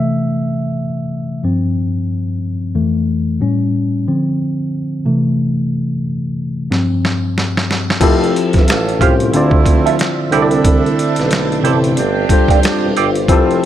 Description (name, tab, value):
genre	R&B, neo-soul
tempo	91 BPM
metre	4/4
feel	swing 59% on 16ths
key	C major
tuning	A4 = 442 Hz
part	tine electric piano	accompaniment	0.0-13.7 s	F2 to E5	-15 LUFS	moving between left 5 dB and right 1 dB	overdrive, auto-pan
part	boom bap sampler-style drum kit	drums	6.7-13.6 s	crash cymbal, hi-hat, kick drum, snare drum	-15 LUFS	right 1 dB	none
part	phased string machine	sustained chords	8.0-13.7 s	D3 to E5	-24 LUFS	right 3 dB	ensemble chorus, phaser
part	mellow horn section	stabs	8.0-13.6 s	A3 to A4	-22 LUFS	right 6 dB	none
part	warm tuba	bass	8.0-13.6 s	E1 to D2	-19 LUFS	right 1 dB	none
part	semi-hollow electric guitar	second line	9.0-13.1 s	C4 to E#5	-19 LUFS	right 13 dB	wah
room	light reverb, digital ambience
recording	none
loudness	-13 LUFS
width	side -11 dB against mid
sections	0.0-8.0 A section; 8.0-13.7 B section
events	tine electric piano solo 0.0-8.0; drum fill 6.7-8.0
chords	0.0 C6; 1.4 G7sus4; 2.7 Fmaj7; 3.4 A7; 4.1 Dm7; 5.0 C6; 6.7 G7sus4; 8.0 Fmaj7; 8.7 A7alt; 9.3 Dm9; 10.3 C69; 12.0 G7sus4